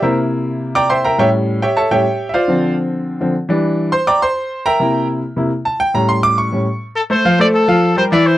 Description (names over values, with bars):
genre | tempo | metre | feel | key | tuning
latin | 208 BPM | 4/4 | straight | unclear | A4 = 440 Hz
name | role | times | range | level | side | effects
clear grand piano | accompaniment | 0.0-8.4 s | A2 to D6 | -14 LUFS | equal | none
clear trumpet | melody | 7.0-8.4 s | A4 to D5 | -15 LUFS | left 2 dB | none
room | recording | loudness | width
light reverb | dry, close 1970s-style studio recording | -13 LUFS | side -14 dB against mid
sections
0.0-7.0 A section; 7.0-8.4 B section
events
grand piano solo 0.0-7.0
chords
0.0 C9; 1.2 A7; 2.3 Dm7; 3.5 Em7; 4.6 C7; 5.8 A7; 7.0 Fadd9